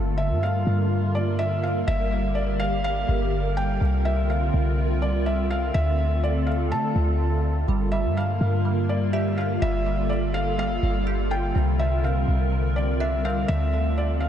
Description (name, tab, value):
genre	hip hop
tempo	124 BPM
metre	4/4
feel	half-time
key	unclear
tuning	A4 = 440 Hz
part	hollow soft pad	sustained chords	0.0-14.3 s	D3 to Bb4	-27 LUFS	equal	ensemble chorus
part	clean 808-style bass	bass	0.0-14.3 s	G1 to D3	-24 LUFS	equal	none
part	felt-muted upright piano	melody	0.2-14.3 s	D5 to A5	-28 LUFS	equal	diffuse ambient delay
part	glassy wavetable pluck	arpeggios	7.7-14.3 s	C3 to G4	-33 LUFS	right 4 dB	chorus, diffuse ambient delay
room	moderate huge ambient reverb, RT60 8.6 s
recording	dreamy mix soaked in reverb, nothing above 10.4 kHz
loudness	-21 LUFS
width	side -9 dB against mid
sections	0.0-14.3 A section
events	none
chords	0.0 Gm7; 3.8 C9sus4; 5.7 Dm7; 7.7 Gm7; 11.6 C9sus4; 13.5 Dm7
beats	0.42 0.91 1.39 | 1.88 2.36 2.85 3.33 | 3.81 4.30 4.78 5.26 | 5.75 6.23 6.72 7.20 | 7.68 8.17 8.65 9.13 | 9.62 10.10 10.59 11.07 | 11.55 12.04 12.52 13.01 | 13.49 13.97